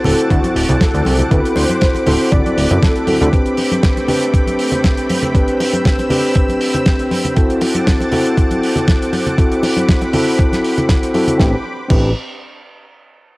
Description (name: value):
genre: nu-disco, nu disco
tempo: 119 BPM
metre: 4/4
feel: swing 54% on 16ths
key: A dorian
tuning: A4 = 440 Hz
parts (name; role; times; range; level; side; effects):
- wide unison lead; melody; 0.0-3.3 s; F#4 to D5; -21 LUFS; equal; tape echo
- mellow tine electric piano; accompaniment; 0.0-12.1 s; C4 to B4; -17 LUFS; equal; sidechain pumping, low-pass filter, cassette tape, tape echo
- lush unison pad; sustained chords; 0.0-11.6 s; A3 to E6; -24 LUFS; right 1 dB; chorus, sidechain pumping, cassette tape
- congas; percussion; 0.0-11.4 s; none; -23 LUFS; equal; none
- fat analog bass; bass; 0.1-3.3, 11.4-12.1 s; D1 to F#2; -16 LUFS; equal; none
- damped 70s drum kit; drums; 0.1-12.0 s; crash cymbal, hi-hat, snare drum; -21 LUFS; right 1 dB; cassette tape
- electronic kick drum; drums; 0.3-12.0 s; none; -15 LUFS; equal; cassette tape
room: light reverb, studio ambience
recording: home recording on cassette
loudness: -12 LUFS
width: side -22 dB against mid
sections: 0.0-11.4 A section; 11.4-13.4 B section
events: filter sweep on tine electric piano 0.0-11.4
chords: 0.0 D7; 3.3 Am11; 7.4 D7; 11.4 Am11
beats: 0.31 0.81 | 1.31 1.82 2.32 2.83 | 3.33 3.83 4.34 4.84 | 5.35 5.85 6.36 6.86 | 7.36 7.87 8.37 8.88 | 9.38 9.88 10.39 10.89 | 11.40 11.90